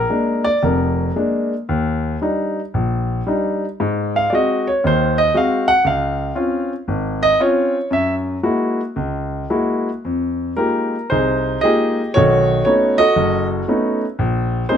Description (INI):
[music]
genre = solo jazz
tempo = 115 BPM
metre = 4/4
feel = swing 66% on 8ths, rubato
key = unclear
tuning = A4 = 440 Hz
[part]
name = warm concert grand piano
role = solo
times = 0.0-14.8 s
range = F1 to Gb5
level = -16 LUFS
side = equal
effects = none
[sound]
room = light reverb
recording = none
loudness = -16 LUFS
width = side -8 dB against mid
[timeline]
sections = 0.0-10.0 A section; 10.0-14.8 B section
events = grand piano solo 0.0-10.0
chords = 0.0 Bb7; 1.7 Ebmaj7; 3.8 Ab7; 5.9 Dbmaj7; 7.9 Gb9; 10.0 Fm11; 12.1 B9; 14.2 Bb9sus4